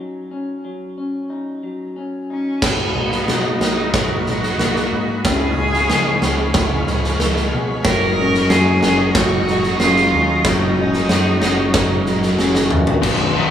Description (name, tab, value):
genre	post-rock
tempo	92 BPM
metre	4/4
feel	straight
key	F# major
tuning	A4 = 441 Hz
part	electric guitar through a small old amp	arpeggios	0.0-13.5 s	B2 to D#4	-24 LUFS	left 2 dB	digital delay
part	rich cello	melody	2.3-12.4 s	B3 to A#4	-21 LUFS	right 1 dB	none
part	analog string pad	sustained chords	2.6-13.5 s	F#3 to B5	-25 LUFS	equal	ensemble chorus
part	growling fingered electric bass	bass	2.6-13.5 s	F#1 to C#3	-23 LUFS	equal	overdrive
part	big rock drum kit	drums	2.6-13.2 s	crash cymbal, kick drum, snare drum, toms	-18 LUFS	right 1 dB	none
part	overdriven semi-hollow guitar	riff	13.0-13.5 s	B2 to D#4	-17 LUFS	left 6 dB	none
room	wet large studio reverb, RT60 1.5 s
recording	band playing live in one room, small room reverb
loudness	-15 LUFS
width	side -9 dB against mid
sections	0.0-2.6 A section; 2.6-13.0 B section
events	drum fill 12.4-13.0, 13.0-13.5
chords	0.0 F#5; 2.6 Bmaj7; 5.2 C#7; 7.8 F#6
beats	0.65 1.31 1.97 | 2.62 3.28 3.94 4.59 | 5.24 5.89 6.55 7.20 | 7.85 8.50 9.14 9.79 | 10.44 11.09 11.74 12.39 | 13.04